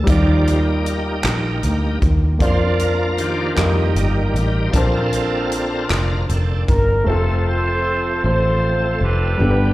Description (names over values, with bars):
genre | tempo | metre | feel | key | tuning
slow gospel | 51 BPM (dotted quarters) | 6/8 | straight | unclear | A4 = 440 Hz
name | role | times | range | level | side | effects
warm concert grand piano | accompaniment | 0.0-9.7 s | G2 to A5 | -24 LUFS | left 1 dB | slapback echo
bright tonewheel organ | sustained chords | 0.0-9.7 s | D3 to D5 | -23 LUFS | right 1 dB | slow rotary speaker, chorus vibrato
fingered electric bass | bass | 0.0-9.7 s | F1 to F2 | -19 LUFS | equal | none
natural country drum kit | drums | 0.1-6.9 s | hi-hat, kick drum, rim click | -21 LUFS | equal | none
group handclap | percussion | 1.2-6.3 s | none | -26 LUFS | right 1 dB | slapback echo
mellow horn section | melody | 6.7-9.7 s | C4 to C5 | -20 LUFS | equal | none
room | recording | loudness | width
light reverb | live gig heard through the venue's PA, recital hall reverb | -16 LUFS | side -16 dB against mid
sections
0.0-7.1 A section; 7.1-9.7 B section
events
tonewheel organ solo 0.0-7.1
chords
0.1 Ebmaj9; 2.4 Bb/F; 3.6 F9sus4; 4.7 Bbmaj9; 7.1 F